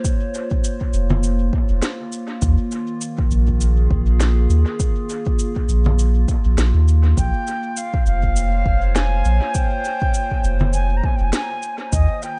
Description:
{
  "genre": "ambient dub",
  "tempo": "101 BPM",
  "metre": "4/4",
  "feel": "swing 57% on 16ths",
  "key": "Bb dorian",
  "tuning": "A4 = 440 Hz",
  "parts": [
    { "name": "warbly tape-like pad", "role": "sustained chords", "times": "0.0-12.4 s", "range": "Eb3 to Db5", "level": "-30 LUFS", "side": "equal", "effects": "chorus, built-in reverb" },
    { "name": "electronic kick drum", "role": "drums", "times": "0.0-12.1 s", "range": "none", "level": "-23 LUFS", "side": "equal", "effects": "none" },
    { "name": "electronic shaker, congas and snare drum", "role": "drums", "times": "0.0-12.4 s", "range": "none", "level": "-29 LUFS", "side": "equal", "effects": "dub echo" },
    { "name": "warm sub bass", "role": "bass", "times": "0.9-12.1 s", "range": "F1 to Eb2", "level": "-18 LUFS", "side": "equal", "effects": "none" },
    { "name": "silver concert flute", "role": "melody", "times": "7.2-12.4 s", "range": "Eb5 to Bb5", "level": "-27 LUFS", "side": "equal", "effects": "dub echo" }
  ],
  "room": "digital ambience",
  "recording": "echo-heavy mix, nothing above 10.4 kHz",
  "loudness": "-19 LUFS",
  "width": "mono",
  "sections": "0.0-12.4 A section",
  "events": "none",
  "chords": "0.0 Bbm; 2.4 Eb9sus4; 7.2 Bbm7"
}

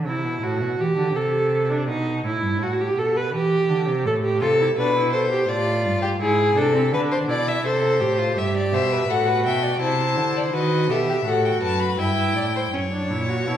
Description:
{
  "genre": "classical, baroque-style fugue for string quartet",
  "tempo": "83 BPM",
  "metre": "3/4",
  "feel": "straight",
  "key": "A minor",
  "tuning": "A4 = 440 Hz",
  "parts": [
    { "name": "rich cello", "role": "bass", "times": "0.0-13.6 s", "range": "F#2 to E3", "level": "-25 LUFS", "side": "right 2 dB", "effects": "none" },
    { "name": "rich viola", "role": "accompaniment", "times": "0.1-13.6 s", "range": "C4 to B4", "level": "-23 LUFS", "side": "right 1 dB", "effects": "none" },
    { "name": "rich violin", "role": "second line", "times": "4.4-13.6 s", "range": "G4 to E5", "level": "-23 LUFS", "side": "left 2 dB", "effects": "none" },
    { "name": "rich violin", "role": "melody", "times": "8.7-12.7 s", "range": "D5 to B5", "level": "-25 LUFS", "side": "left 5 dB", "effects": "none" }
  ],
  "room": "wet recital hall reverb, RT60 1.5 s",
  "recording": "heard from further back in the room",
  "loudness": "-19 LUFS",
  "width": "side -10 dB against mid",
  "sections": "0.0-12.7 A section",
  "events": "none",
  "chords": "0.0 Em; 1.2 Am/C; 1.9 B7; 3.3 Em; 4.1 Am; 5.5 Dm/A; 6.2 E7/G#; 7.7 Am/C; 8.4 Em/G; 9.8 Am/C; 10.5 B7; 12.0 Em/G; 12.7 F#7"
}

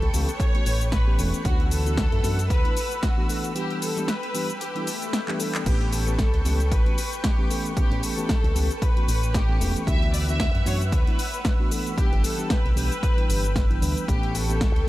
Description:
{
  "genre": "nu-disco, nu disco",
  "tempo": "114 BPM",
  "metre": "4/4",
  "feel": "swing 56% on 16ths",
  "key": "A mixolydian",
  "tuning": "A4 = 442 Hz",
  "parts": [
    { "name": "warm studio violin section", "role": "melody", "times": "0.0-14.9 s", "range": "F#4 to E5", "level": "-31 LUFS", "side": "left 1 dB", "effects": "analog delay" },
    { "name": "lush unison pad", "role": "sustained chords", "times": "0.0-14.9 s", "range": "B4 to E6", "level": "-35 LUFS", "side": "equal", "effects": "chorus, sidechain pumping" },
    { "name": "fingered electric bass with an envelope filter", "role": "bass", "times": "0.0-14.9 s", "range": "E1 to F#2", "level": "-25 LUFS", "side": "equal", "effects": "sidechain pumping" },
    { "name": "house drum kit", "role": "drums", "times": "0.0-14.9 s", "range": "crash cymbal, handclaps, hi-hat, shaker, snare drum", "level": "-31 LUFS", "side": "left 1 dB", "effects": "none" },
    { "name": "mellow tine electric piano", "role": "accompaniment", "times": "0.1-14.9 s", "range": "E3 to B4", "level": "-31 LUFS", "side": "equal", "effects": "medium stereo tremolo, sidechain pumping, tape echo" },
    { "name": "electronic kick drum", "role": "drums", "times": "0.4-14.7 s", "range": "none", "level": "-24 LUFS", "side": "equal", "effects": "none" },
    { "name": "swell", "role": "sound effects", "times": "4.8-5.7 s", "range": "none", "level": "-38 LUFS", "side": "left 6 dB", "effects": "none" }
  ],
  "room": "light reverb",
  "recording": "none",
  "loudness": "-21 LUFS",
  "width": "side -16 dB against mid",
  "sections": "0.0-14.9 A section",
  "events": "break 3.6-5.7; swell 4.8-5.7; drum fill 5.3-5.7",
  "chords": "0.0 A9; 1.5 D69; 3.6 G6; 5.7 A9; 9.9 D69; 12.0 G6; 14.1 A9"
}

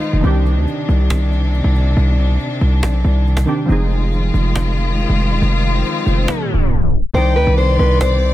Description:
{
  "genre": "hip hop, trap",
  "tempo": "139 BPM",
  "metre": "4/4",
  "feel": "half-time",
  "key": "C minor",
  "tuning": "A4 = 436 Hz",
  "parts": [
    { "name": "fingerpicked acoustic archtop guitar", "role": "melody", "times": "0.0-0.2, 7.1-8.3 s", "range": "Eb4 to C5", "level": "-19 LUFS", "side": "equal", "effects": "low-pass filter, tape echo" },
    { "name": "warm studio string section", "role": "sustained chords", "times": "0.0-8.3 s", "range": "C3 to D5", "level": "-21 LUFS", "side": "left 2 dB", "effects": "none" },
    { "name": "cajon", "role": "drums", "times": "0.0-8.3 s", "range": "none", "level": "-26 LUFS", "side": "right 1 dB", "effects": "none" },
    { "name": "hard-hitting 808-style bass", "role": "bass", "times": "0.1-8.3 s", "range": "Eb1 to D2", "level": "-14 LUFS", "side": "equal", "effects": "none" },
    { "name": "glassy digital keys", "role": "accompaniment", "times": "0.2-8.3 s", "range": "Eb3 to D5", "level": "-24 LUFS", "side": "right 2 dB", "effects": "chorus, low-pass filter" },
    { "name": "swell", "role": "sound effects", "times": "4.9-7.1 s", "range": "none", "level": "-29 LUFS", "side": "left 2 dB", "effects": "none" },
    { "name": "silver concert flute", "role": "second line", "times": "7.1-8.0 s", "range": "G5 to C6", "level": "-23 LUFS", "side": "left 7 dB", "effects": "tape echo" }
  ],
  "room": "little or no reverb",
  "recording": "tape stop",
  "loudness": "-13 LUFS",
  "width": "side -14 dB against mid",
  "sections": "0.0-7.1 A section; 7.1-8.3 B section",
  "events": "break 0.0; swell 4.9-7.1; tape stop 6.3-7.1",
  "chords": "0.2 Cmadd9; 3.7 Fm7; 7.1 Cmadd9"
}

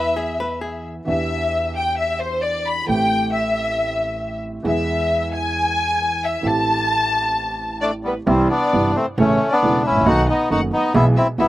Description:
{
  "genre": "tango",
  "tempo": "134 BPM",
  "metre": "4/4",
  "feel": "rubato",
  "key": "A minor",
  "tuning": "A4 = 440 Hz",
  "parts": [
    { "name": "archtop guitar, miked and amplified", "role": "second line", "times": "0.0-0.9 s", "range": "G#4 to B4", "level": "-26 LUFS", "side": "left 2 dB", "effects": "slapback echo" },
    { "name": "warm studio violin section", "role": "second line", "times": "0.0-11.5 s", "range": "B4 to B5", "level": "-21 LUFS", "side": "left 1 dB", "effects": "slapback echo" },
    { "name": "warm upright piano", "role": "accompaniment", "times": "0.0-11.5 s", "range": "E1 to B4", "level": "-22 LUFS", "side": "right 2 dB", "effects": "none" },
    { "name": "upright bass", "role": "bass", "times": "0.0-11.5 s", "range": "E1 to E2", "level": "-27 LUFS", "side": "right 1 dB", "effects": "none" },
    { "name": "bandoneon", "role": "melody", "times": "7.8-11.5 s", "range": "G3 to F#4", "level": "-18 LUFS", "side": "left 1 dB", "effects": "none" }
  ],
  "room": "light reverb",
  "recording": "recorded outdoors, with no room sound",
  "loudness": "-17 LUFS",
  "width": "side -15 dB against mid",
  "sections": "0.0-8.3 A section; 8.3-11.5 B section",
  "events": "violin section solo 0.0-8.3",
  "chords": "0.0 E5; 1.1 Em7; 2.9 Am7; 4.7 E; 6.4 Am7; 8.3 C; 9.2 A; 10.1 B7; 11.0 E/B"
}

